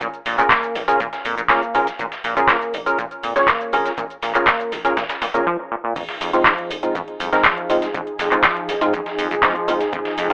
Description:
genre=acid house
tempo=121 BPM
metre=4/4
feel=straight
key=F minor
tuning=A4 = 438 Hz
part: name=liquid acid bass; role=riff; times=0.0-10.3 s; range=Eb2 to Bb3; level=-24 LUFS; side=equal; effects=lush chorus, cassette tape, sidechain pumping, tape echo
part: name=booming analog drum machine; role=drums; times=0.0-10.3 s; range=crash cymbal, handclaps, hi-hat, shaker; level=-18 LUFS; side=equal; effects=none
part: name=dusty soul sampler-style drum kit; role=drums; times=0.0-10.3 s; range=hi-hat, shaker, snare drum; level=-28 LUFS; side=equal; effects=overdrive, sidechain pumping on perc, high-pass filter on perc, high-pass filter on snare, sidechain pumping on hats, high-pass filter on hats, high-pass filter on room
part: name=electronic kick drum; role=drums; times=0.0-10.0 s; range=none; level=-34 LUFS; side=equal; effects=none
part: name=saturated sub bass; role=bass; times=0.3-10.3 s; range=F1 to F2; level=-42 LUFS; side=equal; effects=tube saturation, sidechain pumping
part: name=percussive organ stab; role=stabs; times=0.4-10.3 s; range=Ab3 to Db5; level=-20 LUFS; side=equal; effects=ensemble chorus, tape echo
part: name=warm analog pad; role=sustained chords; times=6.0-10.3 s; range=F3 to Ab4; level=-25 LUFS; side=equal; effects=chorus, vintage 12-bit sampler grit, sidechain pumping
room=moderate studio reverb, RT60 0.6 s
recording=telephone sound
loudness=-16 LUFS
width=side -31 dB against mid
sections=0.0-6.0 A section; 6.0-10.3 B section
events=drop 6.0-10.3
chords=0.0 Bbm7; 6.0 Fm7

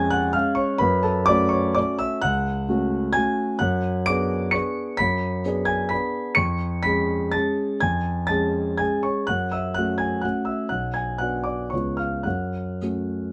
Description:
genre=classical, piano waltz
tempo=101-136 BPM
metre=3/4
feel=rubato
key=F# minor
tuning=A4 = 436 Hz
part: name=dark concert grand piano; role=solo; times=0.0-13.3 s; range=B1 to D7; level=-24 LUFS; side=equal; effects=none
room=light reverb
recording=close, detailed microphones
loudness=-24 LUFS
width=mono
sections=0.0-13.3 A section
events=none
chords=0.0 C#/E#; 0.8 F#m; 3.6 G#m7b5/F#; 6.4 C#/E#; 9.3 F#m; 10.7 Bm; 11.7 C#7; 12.3 F#m

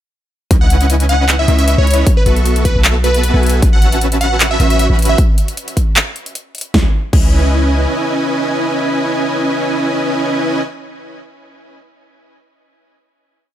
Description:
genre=future bass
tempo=154 BPM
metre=4/4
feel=swing 54% on 16ths, half-time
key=C# minor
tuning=A4 = 438 Hz
part: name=dense compressed supersaw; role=riff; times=0.5-10.6 s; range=B3 to C#6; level=-17 LUFS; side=equal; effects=sidechain pumping, tape echo
part: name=warm 808-style bass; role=bass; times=0.5-7.9 s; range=A1 to C#2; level=-14 LUFS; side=equal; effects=sidechain pumping
part: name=big-room dance drum kit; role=drums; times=0.5-7.3 s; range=crash cymbal, handclaps, hi-hat, snare drum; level=-18 LUFS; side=equal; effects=none
part: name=electronic kick drum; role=drums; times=0.5-7.3 s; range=none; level=-12 LUFS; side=equal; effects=none
part: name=plucky unison lead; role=melody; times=0.6-5.2 s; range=B4 to F#5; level=-18 LUFS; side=equal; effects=phaser, cassette tape, sidechain pumping, digital delay
room=digital ambience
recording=none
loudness=-11 LUFS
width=side -12 dB against mid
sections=0.5-6.7 drop; 6.7-9.9 final chord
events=drop 0.5-6.7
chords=0.5 C#m9; 2.1 B7sus4; 3.6 A69; 5.2 N.C.; 6.7 C#m9

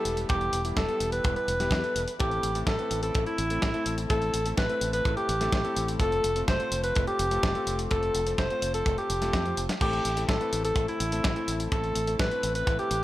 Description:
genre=italo disco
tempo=126 BPM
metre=4/4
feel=straight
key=A minor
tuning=A4 = 440 Hz
part: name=clear alto saxophone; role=melody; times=0.0-13.0 s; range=E4 to C5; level=-28 LUFS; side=equal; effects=shimmer reverb, digital delay
part: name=warm electric grand piano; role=stabs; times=0.0-13.0 s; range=G3 to C5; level=-34 LUFS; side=left 3 dB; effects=shimmer reverb
part: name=fingered electric bass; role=bass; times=0.1-13.0 s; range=E1 to F2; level=-32 LUFS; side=equal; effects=none
part: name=dusty soul sampler-style drum kit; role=drums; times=0.1-13.0 s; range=crash cymbal, hi-hat, snare drum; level=-34 LUFS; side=left 1 dB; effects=studio reverb
part: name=kick drum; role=drums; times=0.3-12.8 s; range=none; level=-30 LUFS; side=equal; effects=studio reverb
room=light reverb, small room ambience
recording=none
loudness=-25 LUFS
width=side -15 dB against mid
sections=0.0-13.0 A section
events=drum fill 9.3-9.8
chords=0.0 Em; 2.2 Am; 6.0 F; 9.8 Am

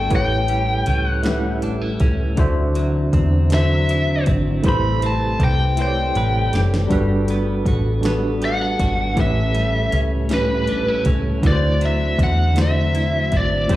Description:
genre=slow six-eight R&B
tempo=53 BPM (dotted quarters)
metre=6/8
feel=straight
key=A dorian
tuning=A4 = 436 Hz
part: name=biting lead guitar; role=melody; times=0.0-13.7 s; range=B4 to B5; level=-23 LUFS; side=left 1 dB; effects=overdrive, slapback echo
part: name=clean electric guitar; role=second line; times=0.0-13.8 s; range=A2 to B4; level=-29 LUFS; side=right 2 dB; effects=wide subtle chorus
part: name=tine electric piano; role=accompaniment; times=0.0-13.8 s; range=A2 to E5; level=-23 LUFS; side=equal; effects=medium stereo tremolo
part: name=percussive tonewheel organ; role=sustained chords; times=0.0-13.8 s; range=C3 to A4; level=-31 LUFS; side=equal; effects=chorus vibrato, slow rotary speaker
part: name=vintage muted fingered electric bass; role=bass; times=0.0-13.8 s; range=F#1 to E2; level=-20 LUFS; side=equal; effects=none
part: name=smooth R&B drum kit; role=drums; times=0.1-13.8 s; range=hi-hat, kick drum, snare drum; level=-22 LUFS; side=equal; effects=none
room=digital ambience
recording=live gig heard through the venue's PA, club reverb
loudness=-16 LUFS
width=side -15 dB against mid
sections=0.0-13.8 A section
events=drum fill 5.8-6.9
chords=0.1 A7; 2.4 D9; 4.6 Am9; 6.9 Gmaj9; 9.2 A7; 11.4 D9

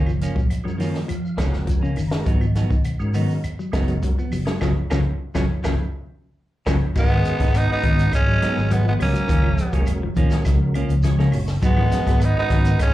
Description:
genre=afrobeat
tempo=102 BPM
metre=4/4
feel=straight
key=G# dorian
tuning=A4 = 440 Hz
part: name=clean electric guitar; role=arpeggios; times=0.0-12.7 s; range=A#2 to F#3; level=-26 LUFS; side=left 3 dB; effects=wide subtle chorus, slapback echo
part: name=clean electric guitar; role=stabs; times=0.0-12.7 s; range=E#3 to D#4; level=-29 LUFS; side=right 5 dB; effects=slapback echo
part: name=fingered electric bass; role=bass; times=0.0-12.9 s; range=E#1 to G#2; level=-21 LUFS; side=equal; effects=none
part: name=claves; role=percussion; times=0.1-12.9 s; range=none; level=-42 LUFS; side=right 2 dB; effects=slapback echo
part: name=shekere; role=percussion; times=0.1-12.9 s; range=none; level=-30 LUFS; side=equal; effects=slapback echo
part: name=compact cocktail drum kit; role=drums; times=0.2-12.9 s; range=crash cymbal, hi-hat, kick drum, snare drum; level=-23 LUFS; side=equal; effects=none
part: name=percussive tonewheel organ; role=accompaniment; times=0.6-12.8 s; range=G#3 to A#5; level=-33 LUFS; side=right 1 dB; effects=chorus vibrato, fast rotary speaker, slapback echo
part: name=raspy tenor saxophone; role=melody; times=7.0-12.9 s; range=B3 to D#4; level=-24 LUFS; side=equal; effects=slapback echo
part: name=brilliant trombone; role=second line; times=7.0-12.9 s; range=G#3 to B3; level=-31 LUFS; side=right 3 dB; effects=slapback echo, analog delay
room=light reverb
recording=live gig heard through the venue's PA, club reverb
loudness=-18 LUFS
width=side -15 dB against mid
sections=0.0-7.0 A section; 7.0-12.9 B section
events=tonewheel organ fill 0.5-2.3; band accent 4.6-7.0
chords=0.0 F#maj7; 2.3 G#m7; 4.6 F#maj7; 7.0 G#m7; 9.3 F#maj7; 11.6 G#m7

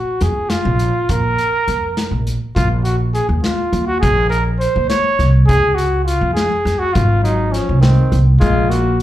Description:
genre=progressive instrumental, band music in an uneven meter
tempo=205 BPM (eighths)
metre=5/8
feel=straight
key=Bb minor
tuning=A4 = 440 Hz
part: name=dark trumpet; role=melody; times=0.0-9.0 s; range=C4 to Db5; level=-18 LUFS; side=equal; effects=plate reverb, slapback echo
part: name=upright bass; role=bass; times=0.2-9.0 s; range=Ab1 to F2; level=-16 LUFS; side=equal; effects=none
part: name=vintage drum kit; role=drums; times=0.2-9.0 s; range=hi-hat, kick drum, snare drum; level=-22 LUFS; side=left 1 dB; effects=none
part: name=warm alto saxophone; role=second line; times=7.2-9.0 s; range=Eb3 to Bb3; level=-21 LUFS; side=left 2 dB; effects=plate reverb, slapback echo
room=light reverb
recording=live gig heard through the venue's PA, club reverb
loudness=-13 LUFS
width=side -13 dB against mid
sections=0.0-2.6 A section; 2.6-9.0 B section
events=none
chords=0.0 Bb5; 2.6 N.C.; 5.5 Db; 7.0 Ab; 8.4 Bb7(no3)

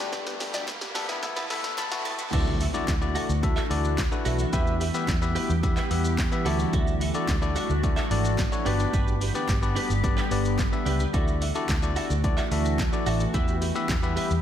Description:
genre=dance-pop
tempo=109 BPM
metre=4/4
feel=straight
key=D major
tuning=A4 = 440 Hz
part: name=bell-like tine electric piano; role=accompaniment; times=0.0-14.3 s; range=G3 to A5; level=-30 LUFS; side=left 4 dB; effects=sidechain pumping
part: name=glassy FM pad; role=sustained chords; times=0.0-14.4 s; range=D3 to A4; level=-32 LUFS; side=equal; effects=ensemble chorus, built-in reverb, sidechain pumping
part: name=analog pluck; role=arpeggios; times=0.0-2.3 s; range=D3 to A6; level=-39 LUFS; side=equal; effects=none
part: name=twelve-string electric guitar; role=riff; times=0.0-14.4 s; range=D4 to E5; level=-35 LUFS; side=right 7 dB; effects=ensemble chorus
part: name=vintage muted fingered electric bass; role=bass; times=0.0-14.4 s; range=G1 to G2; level=-27 LUFS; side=equal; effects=sidechain pumping
part: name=riser and impact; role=sound effects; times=0.0-4.5 s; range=none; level=-35 LUFS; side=right 1 dB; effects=none
part: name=punchy analog drum machine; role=drums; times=0.1-14.4 s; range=crash cymbal, handclaps, hi-hat, kick drum, shaker, snare drum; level=-28 LUFS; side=equal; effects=none
part: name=group handclap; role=percussion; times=0.7-14.0 s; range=none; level=-46 LUFS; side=left 4 dB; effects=none
room=moderate lush hall reverb, RT60 1.6 s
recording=dreamy mix soaked in reverb, high-pass filter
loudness=-23 LUFS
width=side -10 dB against mid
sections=0.0-2.3 A section; 2.3-14.4 B section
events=build-up 0.0-2.3; drum fill 0.0-2.3; riser 0.0-2.3; tine electric piano fill 1.2-2.3; drop 2.3-14.4; impact 2.3-4.5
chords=0.0 G; 1.2 Asus2; 2.3 Dadd9; 4.5 Em; 6.5 Dadd9; 8.7 G; 11.1 Dadd9; 13.3 Em

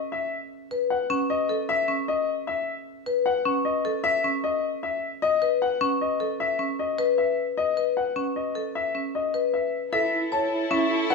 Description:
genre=classical, minimalist pattern music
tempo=153 BPM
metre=6/4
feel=straight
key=B mixolydian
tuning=A4 = 440 Hz
part: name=clear grand piano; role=melody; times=0.1-11.1 s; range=D#5 to A5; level=-26 LUFS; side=left 6 dB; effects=none
part: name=marimba with medium hard mallets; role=arpeggios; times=0.7-11.1 s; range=C#4 to C#5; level=-26 LUFS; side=left 2 dB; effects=none
part: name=mellow French horn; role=second line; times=9.9-11.1 s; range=E4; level=-28 LUFS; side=right 2 dB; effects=none
part: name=rich symphonic string section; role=sustained chords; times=9.9-11.1 s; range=E4 to A4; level=-29 LUFS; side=left 1 dB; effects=none
room=light reverb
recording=studio reverb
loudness=-23 LUFS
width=side -3 dB against mid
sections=0.0-9.9 A section; 9.9-11.1 B section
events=none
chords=0.0 B9sus4; 9.9 B7sus4 (rootless)

